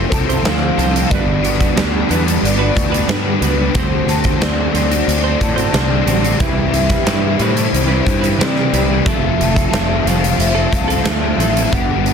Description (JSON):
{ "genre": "rock, shoegaze and dream pop", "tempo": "90 BPM", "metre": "4/4", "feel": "straight", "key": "unclear", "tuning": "A4 = 444 Hz", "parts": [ { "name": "pure breathy sine lead", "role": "melody", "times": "0.0-12.1 s", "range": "A4 to F#5", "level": "-23 LUFS", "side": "left 2 dB", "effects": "chorus, slapback echo" }, { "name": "picked twelve-string acoustic guitar", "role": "arpeggios", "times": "0.0-11.7 s", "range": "F3 to A4", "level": "-27 LUFS", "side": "right 1 dB", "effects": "ensemble chorus, slapback echo" }, { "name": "direct-recorded clean electric guitar", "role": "riff", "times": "0.0-12.1 s", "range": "C3 to C5", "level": "-21 LUFS", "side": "right 12 dB", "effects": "reverse reverb" }, { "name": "overdriven electric guitar", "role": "riff", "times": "0.0-12.1 s", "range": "F2 to G4", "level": "-20 LUFS", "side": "left 14 dB", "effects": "ensemble chorus" }, { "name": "fuzz picked electric bass", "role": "bass", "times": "0.0-12.1 s", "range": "F1 to C3", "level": "-19 LUFS", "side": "equal", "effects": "overdrive" }, { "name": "huge arena drum kit", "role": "drums", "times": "0.1-12.1 s", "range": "hi-hat, kick drum, snare drum", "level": "-18 LUFS", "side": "equal", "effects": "soft clipping on snare" } ], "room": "small room reverb", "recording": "dense, heavily limited modern master", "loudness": "-13 LUFS", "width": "side -6 dB against mid", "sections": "0.0-12.1 A section", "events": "none", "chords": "0.0 Fmaj7; 1.1 Gmaj7; 3.8 D7sus4; 6.4 Cmaj7; 9.1 Fmaj7" }